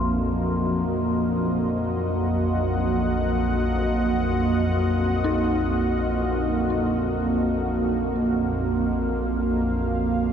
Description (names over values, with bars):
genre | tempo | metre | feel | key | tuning
dark ambient drone | free time | none | none | unclear | A4 = 440 Hz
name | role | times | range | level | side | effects
dark analog pad | sustained chords | 0.0-10.3 s | Bb3 to Gb5 | -24 LUFS | right 2 dB | chorus
organ-like drone | drone | 0.0-10.3 s | Bb1 to F2 | -25 LUFS | left 1 dB | ensemble chorus, built-in reverb
bronze singing bowl | texture | 0.0-10.3 s | C4 to C6 | -39 LUFS | left 1 dB | none
dark detuned synth bell | arpeggios | 5.2-10.3 s | Eb4 | -32 LUFS | left 4 dB | chorus, ping-pong delay
room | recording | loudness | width
wet huge ambient reverb, RT60 8.2 s | in a vast, echoing space | -21 LUFS | side -8 dB against mid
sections
0.0-10.3 A section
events
none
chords
0.0 Gb6/Bb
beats
free time